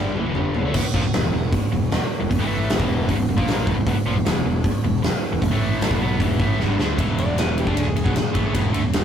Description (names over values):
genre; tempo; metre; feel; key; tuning
hard rock; 154 BPM; 4/4; straight; unclear; A4 = 439 Hz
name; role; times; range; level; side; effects
lightly driven lead guitar; melody; 0.0-0.5, 7.2-9.0 s; G4 to E5; -30 LUFS; left 2 dB; none
cranked stack guitar; riff; 0.0-9.0 s; E2 to D4; -24 LUFS; equal; overdrive
fuzz fingered electric bass; bass; 0.0-9.0 s; E1 to D2; -26 LUFS; equal; overdrive
big rock drum kit; drums; 0.2-9.0 s; crash cymbal, hi-hat, kick drum, ride cymbal, snare drum, toms; -21 LUFS; right 1 dB; none
tonewheel organ; sustained chords; 0.7-7.0 s; E3 to B4; -37 LUFS; left 1 dB; none
room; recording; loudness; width
light reverb; rough rehearsal-room recording, warm saturation; -18 LUFS; side -8 dB against mid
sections
0.7-7.0 A section; 7.0-9.0 B section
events
drum fill 0.0-0.7, 6.6-7.0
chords
0.0 E5; 2.4 A5; 2.8 E5; 5.5 A5; 5.9 E5; 7.0 E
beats
0.36 | 0.75 1.14 1.53 1.92 | 2.31 2.70 3.09 3.48 | 3.87 4.26 4.65 5.04 | 5.43 5.82 6.21 6.59 | 6.98 7.37 7.76 8.15 | 8.54 8.93